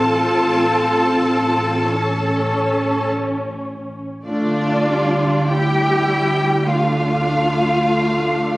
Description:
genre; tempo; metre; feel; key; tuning
classical, slow romantic movement for string orchestra; 46-56 BPM; 4/4; rubato; D minor; A4 = 440 Hz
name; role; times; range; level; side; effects
warm symphonic violin section; melody; 0.0-8.6 s; D5 to A5; -26 LUFS; left 1 dB; none
warm symphonic violin section; second line; 0.0-8.6 s; D5 to A5; -24 LUFS; equal; none
warm studio viola section; accompaniment; 0.0-8.6 s; G3 to F4; -21 LUFS; equal; none
warm studio cello section; bass; 0.0-8.6 s; D4 to A4; -21 LUFS; equal; none
warm symphonic double bass section; bass; 0.0-8.6 s; A1 to D2; -23 LUFS; right 1 dB; none
room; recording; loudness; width
moderate scoring stage reverb, RT60 1.8 s; recorded on a phone in the room, studio reverb; -15 LUFS; side -19 dB against mid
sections
0.0-8.6 A section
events
none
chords
0.0 F/A; 1.9 A; 4.3 Dm

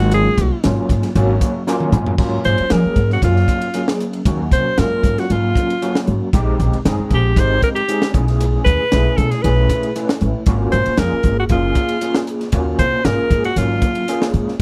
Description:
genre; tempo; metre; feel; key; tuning
electric jazz fusion; 116 BPM; 4/4; straight; Ab mixolydian; A4 = 440 Hz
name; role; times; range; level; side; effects
bright alto saxophone; melody; 0.0-14.3 s; F4 to C5; -22 LUFS; equal; none
overdriven tine electric piano; accompaniment; 0.0-14.5 s; Gb3 to Ab5; -24 LUFS; equal; medium tremolo, ensemble chorus
upright bass; bass; 0.0-14.6 s; Gb1 to F3; -20 LUFS; equal; none
crisp fusion drum kit; drums; 0.0-14.6 s; crash cymbal, hi-hat, kick drum, ride cymbal, snare drum, toms; -22 LUFS; equal; none
room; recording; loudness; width
little or no reverb; none; -17 LUFS; mono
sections
0.0-2.2 A section; 2.2-14.6 B section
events
alto saxophone solo 0.0-2.2; tine electric piano fill 1.4-2.2; drum fill 1.7-2.2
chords
0.0 Ab13sus4; 6.3 Bb13sus4; 8.1 B13sus4; 10.5 Ab13sus4

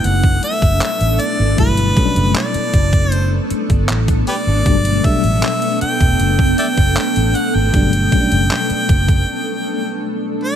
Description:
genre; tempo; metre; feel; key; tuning
contemporary R&B; 78 BPM; 4/4; straight; G major; A4 = 440 Hz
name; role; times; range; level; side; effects
clear harmonica; melody; 0.0-10.6 s; G4 to G5; -20 LUFS; equal; tape echo
FM electric piano with auto-pan; accompaniment; 0.0-10.6 s; B2 to E4; -22 LUFS; left 4 dB; none
granular cloud pad; sustained chords; 0.0-10.6 s; A3 to A4; -21 LUFS; equal; built-in reverb
vintage muted fingered electric bass; bass; 0.0-9.2 s; E1 to A1; -17 LUFS; right 1 dB; none
detuned 8-bit digital drum machine; drums; 0.0-9.3 s; handclaps, hi-hat, kick drum; -17 LUFS; equal; overdrive
room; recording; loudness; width
digital ambience; none; -13 LUFS; side -9 dB against mid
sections
0.0-10.6 A section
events
break 9.3-10.6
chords
0.0 Gmaj9

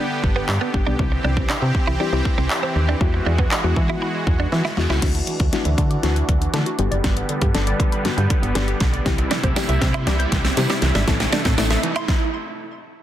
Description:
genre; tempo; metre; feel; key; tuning
dance-pop; 119 BPM; 4/4; straight; unclear; A4 = 440 Hz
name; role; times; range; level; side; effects
soft round pluck; accompaniment; 0.0-11.9 s; G3 to A4; -28 LUFS; left 7 dB; chorus, sidechain pumping, low-pass filter
supersaw pad; sustained chords; 0.0-12.1 s; C3 to G4; -26 LUFS; right 1 dB; sidechain pumping, low-pass filter
direct-recorded clean electric guitar; riff; 0.0-5.0, 9.2-12.0 s; B3 to E4; -28 LUFS; right 4 dB; analog chorus, low-pass filter
solid FM bass; bass; 0.2-11.8 s; F#1 to E3; -21 LUFS; equal; sidechain pumping
pop drum kit; drums; 0.2-12.2 s; crash cymbal, handclaps, hi-hat, kick drum, snare drum; -21 LUFS; equal; none
glassy wavetable pluck; arpeggios; 5.0-12.0 s; D3 to G6; -30 LUFS; right 2 dB; chorus, sidechain pumping, low-pass filter, digital delay
riser; sound effects; 7.7-12.1 s; none; -31 LUFS; right 3 dB; none
tambourine; percussion; 9.6-11.7 s; none; -34 LUFS; right 7 dB; none
room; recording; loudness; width
light reverb, digital ambience; dense, heavily limited modern master; -18 LUFS; side -12 dB against mid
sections
0.0-5.0 A section; 5.0-13.0 B section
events
drum fill 4.5-5.0, 5.0-12.1; build-up 5.0-13.0; filter sweep 5.0-13.0; riser 7.7-13.0; stop 12.1-13.0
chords
0.0 G; 1.0 C; 3.0 Eadd9; 5.0 Dadd9; 6.8 G; 9.1 C; 11.1 Am

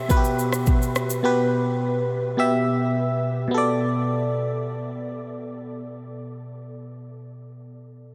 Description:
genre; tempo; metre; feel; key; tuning
afrobeats; 105 BPM; 4/4; straight; B minor; A4 = 440 Hz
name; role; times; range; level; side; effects
barking FM electric piano; accompaniment; 0.0-8.1 s; B2 to E5; -26 LUFS; equal; chorus
afro-pop drum kit; drums; 0.1-1.2 s; kick drum, rim click, shaker; -26 LUFS; equal; none
room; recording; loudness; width
wet huge ambient reverb, RT60 7.2 s; dreamy mix soaked in reverb; -23 LUFS; mono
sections
0.0-3.5 A section; 3.5-5.8 B section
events
none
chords
0.0 Em/B; 3.5 Bm7

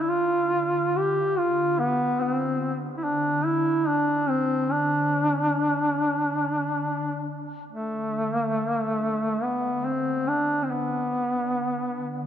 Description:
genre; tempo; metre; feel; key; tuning
caucasian folk; 71 BPM; 3/4; rubato; D dorian; A4 = 440 Hz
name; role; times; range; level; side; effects
warm duduk; melody; 0.0-12.3 s; A3 to G4; -23 LUFS; equal; none
glassy FM pad; drone; 0.0-12.3 s; D3; -33 LUFS; left 1 dB; ensemble chorus, built-in reverb
room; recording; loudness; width
wet cathedral reverb, RT60 4.8 s; dark, warm production; -23 LUFS; side -9 dB against mid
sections
0.0-7.7 A section; 7.7-12.3 B section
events
none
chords
none

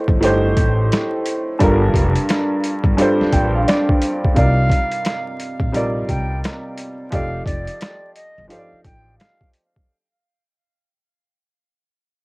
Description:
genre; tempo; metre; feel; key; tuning
hip hop, boom-bap hip-hop; 87 BPM; 4/4; swing 62% on 16ths; unclear; A4 = 438 Hz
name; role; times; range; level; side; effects
warm upright piano; accompaniment; 0.0-9.9 s; G2 to G5; -19 LUFS; equal; cassette tape, high-pass filter, low-pass filter
upright bass; bass; 0.1-9.2 s; F1 to C2; -20 LUFS; equal; none
boom bap sampler-style drum kit; drums; 0.1-9.9 s; hi-hat, kick drum, snare drum; -19 LUFS; equal; overdrive
concert flute; melody; 4.4-9.5 s; D5 to G5; -26 LUFS; right 1 dB; high-pass filter, low-pass filter, cassette tape, tape echo
room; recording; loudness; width
little or no reverb; home recording on cassette, vinyl crackle; -15 LUFS; side -28 dB against mid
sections
0.0-4.4 A section; 4.4-9.9 B section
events
fade-out 4.4-9.9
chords
0.0 Am7b5; 1.6 Gm7; 4.4 Cm11; 7.1 F13

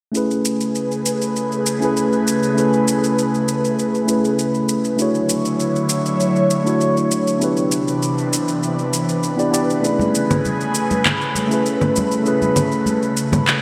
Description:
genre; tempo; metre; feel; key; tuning
sunset chillout; 99 BPM; 4/4; straight; A major; A4 = 441 Hz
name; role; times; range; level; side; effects
mellow tine electric piano; accompaniment; 0.1-13.6 s; A3 to D5; -22 LUFS; equal; digital delay
airy breathy pad; sustained chords; 0.1-13.6 s; C3 to C#5; -23 LUFS; equal; chorus, phaser
electronic shaker, congas and handclaps; drums; 0.1-13.6 s; none; -25 LUFS; equal; overdrive, studio reverb, gated reverb
congas; percussion; 10.0-13.4 s; none; -28 LUFS; equal; none
room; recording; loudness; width
wet lush hall reverb, RT60 2.5 s; bright 1980s-style digital production; -19 LUFS; mono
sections
0.1-13.6 A section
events
none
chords
0.1 Amaj9; 5.0 Dmaj9; 7.4 Cmaj9; 9.8 Amaj9

